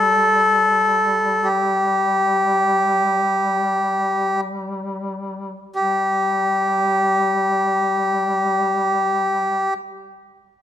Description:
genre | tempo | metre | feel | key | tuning
caucasian folk, Caucasian lament | free time | none | none | unclear | A4 = 435 Hz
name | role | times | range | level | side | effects
melodica | melody | 0.0-9.7 s | G4 to A4 | -17 LUFS | left 1 dB | none
mellow duduk | drone | 0.0-9.7 s | G3 | -28 LUFS | left 2 dB | none
room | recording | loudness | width
light reverb | minimal, uncompressed stereo recording | -17 LUFS | side -10 dB against mid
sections
0.0-5.8 A section; 5.8-9.4 B section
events
slowing down 0.0-5.8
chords
none

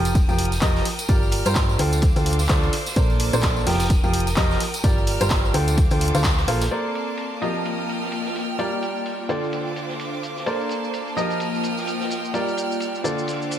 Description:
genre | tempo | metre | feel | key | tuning
piano house | 128 BPM | 4/4 | swing 58% on 16ths | Bb major | A4 = 439 Hz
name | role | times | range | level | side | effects
clear studio violin section | sustained chords | 0.0-13.6 s | Bb3 to F6 | -32 LUFS | right 2 dB | sidechain pumping
bright upright piano | riff | 0.0-13.6 s | Bb2 to G5 | -25 LUFS | right 1 dB | sidechain pumping, low-pass filter, ping-pong delay
solid FM bass | bass | 0.0-6.7 s | F1 to G2 | -23 LUFS | equal | sidechain pumping
punchy analog drum machine | drums | 0.1-13.6 s | cabasa, handclaps, hi-hat | -29 LUFS | equal | low-pass filter on hats, low-pass filter on snare, low-pass filter on perc, gated reverb
street-band drum kit | drums | 0.1-13.6 s | ride cymbal, snare drum | -36 LUFS | equal | high-pass filter on cymbals, low-pass filter on cymbals, high-pass filter on snare, low-pass filter on snare, high-pass filter on room, low-pass filter on room, gated reverb
tambourine | percussion | 0.1-6.7 s | none | -34 LUFS | right 1 dB | none
electronic kick drum | drums | 0.2-6.4 s | none | -21 LUFS | equal | none
airy breathy pad | texture | 6.9-13.6 s | Bb3 to A5 | -29 LUFS | left 1 dB | chorus, sidechain pumping
room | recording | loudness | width
light reverb, small room ambience | bright 1980s-style digital production | -20 LUFS | side -10 dB against mid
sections
0.0-6.7 A section; 6.7-13.6 B section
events
filter sweep on drum 6.7-13.6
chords
0.0 F9sus4; 1.1 Gm7; 1.8 Dm7; 3.0 Bbmaj9; 3.7 F9sus4; 4.8 Gm7; 5.5 Dm7; 6.7 Bbmaj9; 7.4 F9sus4; 8.6 Gm7; 9.3 Dm7; 10.5 Bbmaj9; 11.2 F9sus4; 12.3 Gm7; 13.0 Dm7

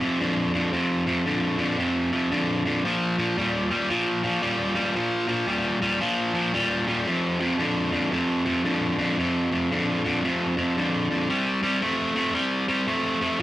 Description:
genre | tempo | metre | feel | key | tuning
blues | 114 BPM | 4/4 | swing 63% on 8ths | unclear | A4 = 439 Hz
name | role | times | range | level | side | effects
cranked stack guitar | solo | 0.0-13.4 s | F2 to A3 | -22 LUFS | equal | overdrive
room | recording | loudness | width
moderate studio reverb, RT60 0.5 s | rough rehearsal-room recording, tube saturation | -22 LUFS | side -15 dB against mid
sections
0.0-13.4 A section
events
none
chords
0.0 F5; 2.8 Bb5; 7.1 F5; 11.3 C5

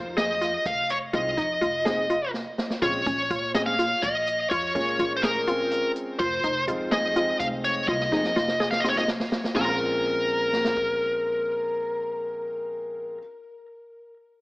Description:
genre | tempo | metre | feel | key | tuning
progressive instrumental, band music in an uneven meter | 249 BPM (eighths) | 7/8 | straight | Bb minor | A4 = 440 Hz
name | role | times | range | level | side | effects
resonant blip pluck | arpeggios | 0.0-13.3 s | Bb3 to Bb4 | -30 LUFS | equal | chorus
upright bass | bass | 0.0-13.2 s | F1 to Bb2 | -38 LUFS | equal | none
smooth overdriven lead guitar | melody | 0.2-13.2 s | Bb4 to F5 | -25 LUFS | equal | digital delay
open jazz drum kit | drums | 0.2-10.9 s | crash cymbal, hi-hat, kick drum, snare drum | -30 LUFS | equal | none
warm concert grand piano | accompaniment | 1.1-13.2 s | Ab3 to Ab4 | -33 LUFS | equal | none
room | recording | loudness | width
moderate plate reverb, RT60 1.8 s | AM radio sound | -23 LUFS | side -23 dB against mid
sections
0.0-9.6 A section; 9.6-12.9 B section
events
drum fill 2.3-2.8, 7.9-9.6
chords
0.0 Fm7; 2.8 Bbm7; 6.2 Fm7; 9.6 Bbm7

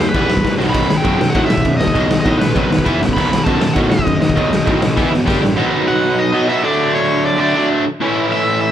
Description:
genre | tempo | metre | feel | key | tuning
punk rock | 199 BPM | 4/4 | straight | unclear | A4 = 440 Hz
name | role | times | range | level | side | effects
overdriven electric guitar | melody | 0.0-8.7 s | B4 to B5 | -20 LUFS | equal | none
overdriven semi-hollow guitar | riff | 0.0-8.7 s | A2 to G4 | -16 LUFS | equal | none
fuzz picked electric bass | bass | 0.0-5.5 s | E1 to A2 | -21 LUFS | equal | overdrive
raw garage drum kit | drums | 0.1-5.5 s | crash cymbal, kick drum, ride cymbal, snare drum | -17 LUFS | equal | none
room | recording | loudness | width
light reverb | band playing live in one room | -13 LUFS | side -10 dB against mid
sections
0.0-5.6 A section; 5.6-8.7 B section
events
drum fill 0.4-0.7, 5.0-5.6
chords
0.0 Em; 0.6 B; 2.9 E5; 3.2 B; 5.0 E5; 5.3 G5; 5.6 B; 6.6 D; 8.0 A

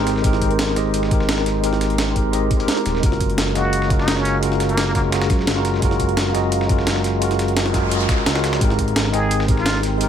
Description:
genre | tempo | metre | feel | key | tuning
liquid drum and bass | 172 BPM | 4/4 | straight | unclear | A4 = 440 Hz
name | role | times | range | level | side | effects
bright tine electric piano | accompaniment | 0.0-10.1 s | Ab3 to G5 | -21 LUFS | equal | medium stereo tremolo, dub echo
glassy FM pad | sustained chords | 0.0-10.1 s | Ab4 to C6 | -28 LUFS | left 1 dB | ensemble chorus, built-in reverb, phaser, sidechain pumping
smooth synth bass | bass | 0.0-10.1 s | Eb1 to Gb2 | -22 LUFS | equal | none
breakbeat sampler-style drum kit | drums | 0.1-10.1 s | hi-hat, snare drum | -24 LUFS | right 1 dB | none
dusty soul sampler-style drum kit | drums | 0.1-10.1 s | hi-hat, snare drum | -29 LUFS | left 1 dB | high-pass filter on snare, high-pass filter on hats
electronic kick drum | drums | 0.2-9.6 s | none | -20 LUFS | equal | none
trumpet with plunger mute | melody | 3.6-5.0, 9.1-9.8 s | Bb3 to Ab4 | -27 LUFS | right 1 dB | dub echo
noise sweep | sound effects | 7.5-8.6 s | none | -28 LUFS | equal | none
room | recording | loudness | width
light reverb | none | -16 LUFS | side -9 dB against mid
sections
0.0-10.1 A section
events
noise sweep 7.5-8.6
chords
0.0 Abmaj9; 3.0 Gbmaj9; 8.6 Abmaj9

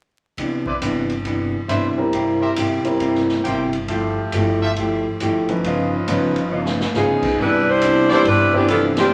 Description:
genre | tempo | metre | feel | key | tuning
jazz, big band swing | 137 BPM | 4/4 | swing 65% on 8ths | C major | A4 = 440 Hz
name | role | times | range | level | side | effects
vintage hollow-body jazz guitar | accompaniment | 0.4-9.0 s | C3 to G4 | -24 LUFS | equal | none
swinging big-band drum kit | drums | 0.4-9.0 s | crash cymbal, hi-hat, kick drum, ride cymbal, snare drum | -32 LUFS | equal | none
clear trumpet section | stabs | 0.7-8.7 s | E4 to G5 | -29 LUFS | equal | none
upright bass | bass | 0.8-9.1 s | G1 to C2 | -29 LUFS | equal | none
clear concert grand piano | accompaniment | 2.0-9.1 s | E3 to B4 | -24 LUFS | equal | none
clear saxophone section | melody | 7.0-9.1 s | E3 to C5 | -18 LUFS | equal | none
room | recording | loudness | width
wet large studio reverb, RT60 1.3 s | vinyl crackle | -19 LUFS | mono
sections
0.4-7.4 A section; 7.4-9.1 B section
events
drum fill 6.5-6.9; band accent 8.9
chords
0.4 Cmaj9; 2.1 C7; 3.9 Fmaj9; 5.6 Db9; 7.4 Cmaj9

